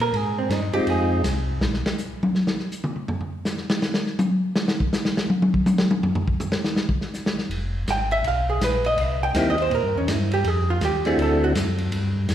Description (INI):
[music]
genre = soul jazz organ trio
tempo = 163 BPM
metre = 4/4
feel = swing 64% on 8ths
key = unclear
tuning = A4 = 441 Hz
[part]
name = vintage hollow-body jazz guitar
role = accompaniment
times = 0.0-1.2, 7.9-11.5 s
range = C4 to G5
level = -24 LUFS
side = right 2 dB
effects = none
[part]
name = mellow tonewheel organ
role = bass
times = 0.0-1.8, 7.5-12.3 s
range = F1 to Bb2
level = -25 LUFS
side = equal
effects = slow rotary speaker
[part]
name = vintage drum kit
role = drums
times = 0.0-12.3 s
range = hi-hat, kick drum, ride cymbal, snare drum, toms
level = -24 LUFS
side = left 1 dB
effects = none
[part]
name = percussive tonewheel organ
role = melody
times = 0.7-1.2, 9.4-11.5 s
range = Ab3 to G4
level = -25 LUFS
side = left 1 dB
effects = slow rotary speaker
[sound]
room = moderate concert hall reverb, RT60 2.3 s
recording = recorded in a church or concert hall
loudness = -20 LUFS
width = side -11 dB against mid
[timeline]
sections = 0.0-12.3 A section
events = hollow-body jazz guitar solo 0.0-12.3; drum solo 1.6-7.5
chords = 0.0 Fm9; 1.6 N.C.; 7.5 Fdim; 9.0 C7#9; 10.5 F5; 11.2 D7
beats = | 0.14 0.50 0.87 1.24 | 1.61 1.98 2.35 2.71 | 3.08 3.45 3.82 4.19 | 4.56 4.92 5.29 5.66 | 6.03 6.40 6.77 7.14 | 7.50 7.87 8.24 8.61 | 8.98 9.35 9.72 10.08 | 10.45 10.82 11.19 11.56 | 11.93 12.29